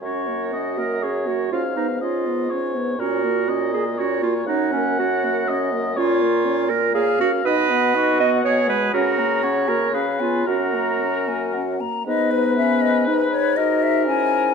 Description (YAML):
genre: quick classical-period movement for wind quintet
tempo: 121 BPM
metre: 3/4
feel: rubato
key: F# major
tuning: A4 = 440 Hz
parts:
  - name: hollow concert flute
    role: melody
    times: 0.0-14.5 s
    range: A#4 to A#5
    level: -26 LUFS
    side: left 9 dB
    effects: none
  - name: warm oboe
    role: second line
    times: 0.0-14.5 s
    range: F#4 to F#5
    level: -27 LUFS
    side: left 4 dB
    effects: none
  - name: bright clarinet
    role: accompaniment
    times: 0.0-14.5 s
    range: C#4 to D#5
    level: -22 LUFS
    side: right 6 dB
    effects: none
  - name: mellow French horn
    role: accompaniment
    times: 0.0-14.5 s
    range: G#3 to D#4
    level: -27 LUFS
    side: left 2 dB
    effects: none
  - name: warm bassoon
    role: bass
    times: 0.0-14.5 s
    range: F#2 to C#3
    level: -25 LUFS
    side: right 1 dB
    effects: none
room: wet recital hall reverb, RT60 1.4 s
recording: dark, warm production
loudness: -18 LUFS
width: side -6 dB against mid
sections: 0.0-12.1 A section; 12.1-14.5 B section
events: none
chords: 0.0 F#; 1.5 C#7/G#; 3.0 F#/A#; 4.5 F#; 6.0 A#m; 7.5 B; 8.4 G#m/B; 8.9 F#/C#; 9.9 C#7; 10.5 F#; 12.1 G#m; 13.6 A#m7b5/G#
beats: | 0.02 0.53 1.03 | 1.52 2.02 2.51 | 2.99 3.49 3.98 | 4.47 4.99 5.48 | 5.97 6.46 6.94 | 7.45 7.95 8.45 | 8.94 9.44 9.94 | 10.47 11.01 11.55 | 12.07 12.57 13.07 | 13.57 14.07